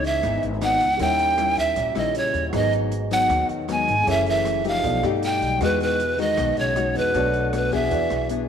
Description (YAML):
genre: bossa nova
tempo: 156 BPM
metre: 4/4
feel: straight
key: E major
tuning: A4 = 439 Hz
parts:
  - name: breathy bright pan flute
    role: melody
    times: 0.0-8.3 s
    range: B4 to G#5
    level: -22 LUFS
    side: right 2 dB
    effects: slapback echo
  - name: dark baby grand piano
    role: accompaniment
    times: 0.0-8.5 s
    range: E4 to D#6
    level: -31 LUFS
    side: right 10 dB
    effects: none
  - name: nylon-string guitar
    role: accompaniment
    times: 0.0-8.5 s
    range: F#2 to G#4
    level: -27 LUFS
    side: left 9 dB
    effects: none
  - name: upright bass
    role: bass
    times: 0.0-8.5 s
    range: F#1 to G2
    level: -29 LUFS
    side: equal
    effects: none
  - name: open jazz drum kit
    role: drums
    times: 0.0-8.4 s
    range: hi-hat, kick drum, rim click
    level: -37 LUFS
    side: right 2 dB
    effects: none
  - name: breathy trombone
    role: second line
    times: 2.0-8.5 s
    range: B2 to G#3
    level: -32 LUFS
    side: left 9 dB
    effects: none
room: wet echo chamber reverb, RT60 1.4 s, small room ambience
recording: 1960s-style stereo with parts hard left and right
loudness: -19 LUFS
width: side -8 dB against mid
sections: 0.0-8.5 A section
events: none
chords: 0.0 C#m9; 1.0 D#7b9; 2.5 G#m7; 4.1 F#m7; 4.8 B7alt; 5.6 Emaj9; 7.1 Bm7; 7.9 E7